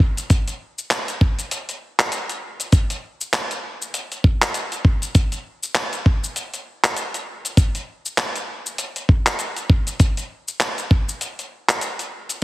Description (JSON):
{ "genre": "downtempo", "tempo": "99 BPM", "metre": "4/4", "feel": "swing 58% on 16ths", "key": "none", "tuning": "none", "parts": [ { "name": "electronic kick drum", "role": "drums", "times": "0.0-11.1 s", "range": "none", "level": "-15 LUFS", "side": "equal", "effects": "none" }, { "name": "dusty soul sampler-style drum kit", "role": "drums", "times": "0.2-12.4 s", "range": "handclaps, hi-hat, shaker", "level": "-22 LUFS", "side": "equal", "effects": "none" } ], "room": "light reverb", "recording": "heavily compressed radio sound", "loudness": "-19 LUFS", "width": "side -18 dB against mid", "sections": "0.0-12.4 A section", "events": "break 2.1-2.7", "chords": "none" }